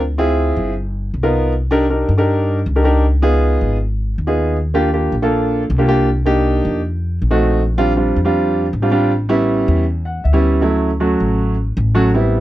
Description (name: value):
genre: Afro-Cuban jazz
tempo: 158 BPM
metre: 4/4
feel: straight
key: unclear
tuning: A4 = 435 Hz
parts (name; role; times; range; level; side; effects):
- upright bass; bass; 0.0-12.4 s; G1 to G2; -17 LUFS; equal; none
- warm baby grand piano; accompaniment; 0.2-12.4 s; F#3 to Gb5; -16 LUFS; right 1 dB; none
room: little or no reverb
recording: dry, close 1970s-style studio recording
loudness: -14 LUFS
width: side -14 dB against mid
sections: 0.0-10.6 A section; 10.6-12.4 B section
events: grand piano fill 9.9-10.6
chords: 0.0 Dm7b5; 0.8 G7alt; 1.5 Cm9; 3.0 Db9; 4.6 Ebmaj9; 6.1 Cm7; 6.8 F7b9; 7.6 Bb69; 9.1 A7; 10.6 Dmaj9